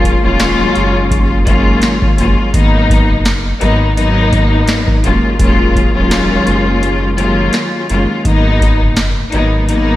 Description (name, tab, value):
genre	hip hop, boom-bap hip-hop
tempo	84 BPM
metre	4/4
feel	swing 56% on 16ths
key	G# dorian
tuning	A4 = 440 Hz
part	warm studio string section	accompaniment	0.0-10.0 s	D#2 to E#4	-13 LUFS	left 1 dB	cassette tape, high-pass filter, low-pass filter
part	soft dub sub bass	bass	0.0-10.0 s	D#1 to G#1	-16 LUFS	equal	none
part	booming analog drum machine	drums	0.0-9.9 s	hi-hat, kick drum, snare drum	-15 LUFS	equal	none
room	light reverb, digital ambience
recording	vinyl crackle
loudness	-10 LUFS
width	side -15 dB against mid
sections	0.0-8.3 A section; 8.3-10.0 B section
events	break 6.8-8.3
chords	0.0 D#m11; 2.5 G#m9; 5.0 D#m11; 8.3 G#m9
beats	0.39 1.11 1.82 | 2.54 3.25 3.97 4.68 | 5.39 6.11 6.82 7.54 | 8.25 8.97 9.68